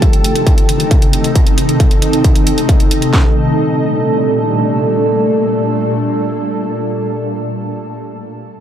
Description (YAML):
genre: uplifting trance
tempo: 135 BPM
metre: 4/4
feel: straight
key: G minor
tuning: A4 = 441 Hz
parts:
  - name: shimmering ambient pad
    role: sustained chords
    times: 0.0-6.8 s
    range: Bb2 to A4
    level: -14 LUFS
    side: equal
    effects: chorus, built-in reverb, sidechain pumping
  - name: electronic hi-hat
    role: drums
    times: 0.0-3.1 s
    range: none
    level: -22 LUFS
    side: right 1 dB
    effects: overdrive, sidechain pumping on hats
  - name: techno drum kit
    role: drums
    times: 0.0-3.2 s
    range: handclaps, kick drum, snare drum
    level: -11 LUFS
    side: equal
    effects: distortion, overdrive
room: wet lush hall reverb, RT60 1.6 s, digital ambience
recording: dreamy mix soaked in reverb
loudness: -11 LUFS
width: side -10 dB against mid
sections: 0.0-3.1 A section; 3.1-6.7 B section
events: none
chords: 0.0 Adim; 3.1 Gmadd9